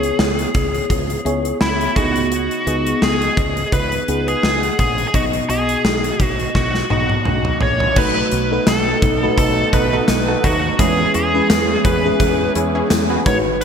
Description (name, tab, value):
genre	1980s-style pop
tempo	85 BPM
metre	4/4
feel	swing 55% on 16ths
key	unclear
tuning	A4 = 440 Hz
part	biting lead guitar	melody	0.0-13.6 s	E4 to C#5	-20 LUFS	equal	overdrive, digital delay
part	FM electric piano with soft pad layer	accompaniment	0.0-13.6 s	G#2 to F#5	-22 LUFS	equal	chorus, phaser
part	woody fretless electric bass	bass	0.0-13.6 s	G#1 to E2	-24 LUFS	equal	wide subtle chorus
part	gated 80s drum kit	drums	0.0-13.6 s	crash cymbal, hi-hat, kick drum, snare drum, tambourine, toms	-19 LUFS	equal	gated reverb
part	crunchy overdriven guitar	accompaniment	8.0-13.6 s	G#2 to E4	-28 LUFS	right 2 dB	none
part	warm brass ensemble	sustained chords	8.0-13.6 s	E3 to B4	-24 LUFS	equal	none
part	funky polysynth comp	stabs	9.7-13.4 s	C#4 to B4	-25 LUFS	right 2 dB	chorus, digital delay
room	moderate lush hall reverb, RT60 2.4 s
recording	bright 1980s-style digital production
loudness	-15 LUFS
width	side -7 dB against mid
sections	0.0-8.0 A section; 8.0-13.6 B section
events	drum fill 6.6-8.0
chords	0.0 C#m7; 2.0 G#m/C#; 5.1 B; 8.0 B7; 10.8 E6